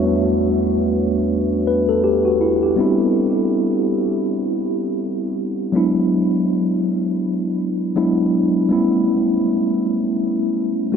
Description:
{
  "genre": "R&B",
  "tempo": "81 BPM",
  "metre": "4/4",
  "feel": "swing 58% on 16ths",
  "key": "E minor",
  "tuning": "A4 = 440 Hz",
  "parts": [
    { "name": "mellow tine electric piano", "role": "solo", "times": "0.0-11.0 s", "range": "E2 to B4", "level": "-16 LUFS", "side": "equal", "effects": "medium stereo tremolo" }
  ],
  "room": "wet huge ambient reverb, RT60 7.6 s",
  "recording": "dreamy mix soaked in reverb",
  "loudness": "-16 LUFS",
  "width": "side -7 dB against mid",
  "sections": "0.0-11.0 A section",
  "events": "none",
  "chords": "0.0 Em11; 2.8 Cmaj7; 5.7 E7; 8.7 A9"
}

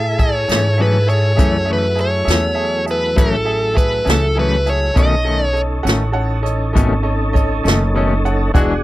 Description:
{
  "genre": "slow blues",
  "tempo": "67 BPM (dotted quarters)",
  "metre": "12/8",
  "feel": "straight",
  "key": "unclear",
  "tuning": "A4 = 441 Hz",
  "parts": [
    { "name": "dark smooth lead guitar", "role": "melody", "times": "0.0-5.6 s", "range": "A4 to E5", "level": "-18 LUFS", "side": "equal", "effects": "overdrive" },
    { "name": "bright upright piano", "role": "accompaniment", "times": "0.0-8.8 s", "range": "G#4 to F#5", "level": "-24 LUFS", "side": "right 3 dB", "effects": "none" },
    { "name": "tonewheel organ", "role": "sustained chords", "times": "0.0-8.8 s", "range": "F#3 to A4", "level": "-25 LUFS", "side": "equal", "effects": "chorus vibrato, slow rotary speaker" },
    { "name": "upright bass", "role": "bass", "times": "0.0-8.8 s", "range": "E1 to A2", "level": "-18 LUFS", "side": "equal", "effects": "none" },
    { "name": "jazz brush drum kit", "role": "drums", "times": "0.2-8.7 s", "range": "hi-hat, kick drum, snare drum", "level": "-16 LUFS", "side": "equal", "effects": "none" },
    { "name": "semi-hollow electric guitar", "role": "accompaniment", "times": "0.5-8.7 s", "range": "F#2 to F#4", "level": "-20 LUFS", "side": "left 4 dB", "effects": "tremolo" }
  ],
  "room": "little or no reverb",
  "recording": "dry, close 1970s-style studio recording",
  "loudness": "-14 LUFS",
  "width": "side -16 dB against mid",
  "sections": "0.0-8.8 A section",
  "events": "none",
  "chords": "0.0 F#m7; 5.0 B9"
}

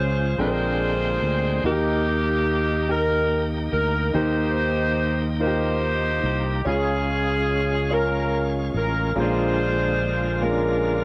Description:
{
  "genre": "slow gospel",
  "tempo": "48 BPM (dotted quarters)",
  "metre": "6/8",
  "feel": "straight",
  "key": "unclear",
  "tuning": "A4 = 439 Hz",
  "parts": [
    { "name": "clear saxophone section", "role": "melody", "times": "0.0-11.0 s", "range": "Bb3 to C5", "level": "-27 LUFS", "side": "equal", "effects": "none" },
    { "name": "clear concert grand piano", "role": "accompaniment", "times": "0.0-11.0 s", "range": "Bb2 to G5", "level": "-29 LUFS", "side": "equal", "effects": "cassette tape" },
    { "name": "bright tonewheel organ", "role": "sustained chords", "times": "0.0-11.0 s", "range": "D3 to G5", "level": "-33 LUFS", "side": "equal", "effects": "slow rotary speaker, overdrive, cassette tape" },
    { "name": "fingered electric bass", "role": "bass", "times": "0.0-11.0 s", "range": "A1 to Eb2", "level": "-28 LUFS", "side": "equal", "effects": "none" }
  ],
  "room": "light reverb",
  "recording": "home recording on cassette",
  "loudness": "-23 LUFS",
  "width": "mono",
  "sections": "0.0-11.0 A section",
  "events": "none",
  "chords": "0.4 Bb13; 1.6 Eb; 6.7 Db; 9.2 Bb7"
}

